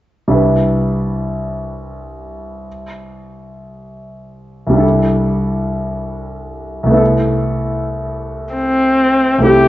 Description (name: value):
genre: classical, impressionist duo for viola and grand piano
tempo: 59-86 BPM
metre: 3/4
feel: rubato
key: C major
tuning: A4 = 440 Hz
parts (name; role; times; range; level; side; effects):
- clear concert grand piano; accompaniment; 0.3-9.7 s; C2 to B4; -16 LUFS; equal; none
- warm viola; melody; 8.5-9.7 s; C4 to G4; -11 LUFS; left 1 dB; none
room: wet recital hall reverb, RT60 1.5 s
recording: worn, warbling old tape, cassette tape, warbly pitch drift, nothing above 7.8 kHz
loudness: -13 LUFS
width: side -15 dB against mid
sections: 0.4-9.5 A section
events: none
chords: 0.4 Cmaj9; 4.8 C69; 7.0 Amadd9/C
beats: | 0.37 1.17 1.93 | 2.67 3.40 4.12 | 4.83 5.54 6.26 | 7.00 7.75 8.54 | 9.47